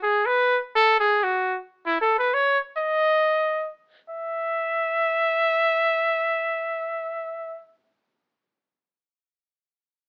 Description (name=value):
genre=jazz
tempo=free time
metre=none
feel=none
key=E major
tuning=A4 = 440 Hz
part: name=clear trumpet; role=solo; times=0.0-7.6 s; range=E4 to E5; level=-23 LUFS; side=equal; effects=none
room=light reverb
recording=small speaker sound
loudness=-23 LUFS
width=mono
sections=0.0-4.1 A section; 4.1-6.9 B section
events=slowing down 1.8-4.1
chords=none